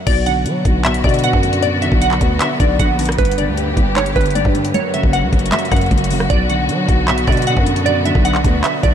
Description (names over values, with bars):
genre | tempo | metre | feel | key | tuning
hip hop, trap | 154 BPM | 4/4 | half-time | B harmonic minor | A4 = 439 Hz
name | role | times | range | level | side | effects
glassy wavetable pluck | melody | 0.0-8.9 s | B4 to F#5 | -19 LUFS | right 2 dB | chorus, analog delay
felt-muted upright piano | accompaniment | 0.0-8.9 s | F#2 to B3 | -21 LUFS | right 1 dB | none
dark symphonic string section | sustained chords | 0.1-8.9 s | C#3 to G4 | -22 LUFS | left 2 dB | none
growling 808-style bass | bass | 0.1-8.9 s | F#1 to F#3 | -20 LUFS | equal | none
trap drum kit | drums | 0.1-8.9 s | crash cymbal, handclaps, hi-hat, kick drum, rim click | -18 LUFS | equal | vintage 12-bit sampler grit
room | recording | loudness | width
light reverb, digital ambience | none | -13 LUFS | side -9 dB against mid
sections
0.1-8.9 A section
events
none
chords
0.1 Bm; 3.2 G; 4.7 F#; 6.3 Bm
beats
| 0.07 0.46 0.85 1.24 | 1.63 2.02 2.40 2.79 | 3.18 3.57 3.96 4.35 | 4.74 5.13 5.52 5.91 | 6.30 6.69 7.08 7.47 | 7.86 8.25 8.64